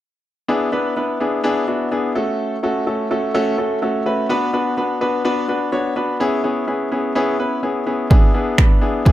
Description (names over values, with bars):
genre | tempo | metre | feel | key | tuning
dance-pop | 126 BPM | 4/4 | straight | unclear | A4 = 438 Hz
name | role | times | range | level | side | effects
clear grand piano | accompaniment | 0.5-9.1 s | A3 to C#5 | -18 LUFS | left 1 dB | sidechain pumping
punchy analog drum machine | drums | 8.1-9.1 s | finger snaps, kick drum | -12 LUFS | right 1 dB | none
room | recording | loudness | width
light reverb | none | -16 LUFS | side -14 dB against mid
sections
0.5-9.1 A section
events
none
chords
0.5 E7; 2.2 F#m; 4.3 Bm; 6.2 C#m7; 8.1 E7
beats
| 0.49 0.96 1.44 1.92 | 2.39 2.87 3.34 3.82 | 4.30 4.77 5.25 5.72 | 6.20 6.68 7.15 7.63 | 8.11 8.58 9.06